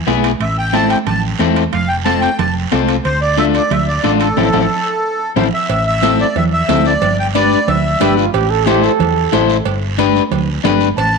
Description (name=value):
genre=latin, cumbia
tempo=182 BPM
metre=4/4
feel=straight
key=A minor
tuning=A4 = 440 Hz
part: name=electric guitar at the edge of break-up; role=accompaniment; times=0.1-10.9 s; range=B3 to C5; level=-17 LUFS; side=left 14 dB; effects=none
part: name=hollow-body short-scale fingered electric bass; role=bass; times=0.1-11.2 s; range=F1 to E2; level=-19 LUFS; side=equal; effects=none
part: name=congas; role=percussion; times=0.1-11.1 s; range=none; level=-20 LUFS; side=right 14 dB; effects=none
part: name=guiro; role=percussion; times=0.1-11.2 s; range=none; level=-29 LUFS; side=right 14 dB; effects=none
part: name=timbales and cowbell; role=percussion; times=0.1-11.1 s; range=none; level=-25 LUFS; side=right 14 dB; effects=none
part: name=accordion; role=melody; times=0.4-8.1, 11.0-11.2 s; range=A4 to A5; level=-17 LUFS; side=right 1 dB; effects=light tremolo tuning
part: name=bright trombone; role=second line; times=8.0-9.5 s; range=F4 to A4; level=-17 LUFS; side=right 11 dB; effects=none
room=moderate plate reverb, RT60 2.6 s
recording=1960s-style stereo with parts hard left and right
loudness=-12 LUFS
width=side -4 dB against mid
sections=0.0-5.7 A section; 5.7-11.2 B section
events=band accent 4.4-5.7; drum fill 4.9-5.7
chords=0.4 Am; 1.7 F; 3.0 Dm; 4.4 Am; 7.0 G; 8.3 Am; 9.7 G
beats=0.07 | 0.41 0.74 1.07 1.40 | 1.73 2.06 2.39 2.72 | 3.05 3.38 3.71 4.04 | 4.37 4.70 5.03 5.37 | 5.70 6.03 6.36 6.69 | 7.02 7.35 7.68 8.01 | 8.34 8.67 9.00 9.33 | 9.66 9.99 10.32 10.65 | 10.98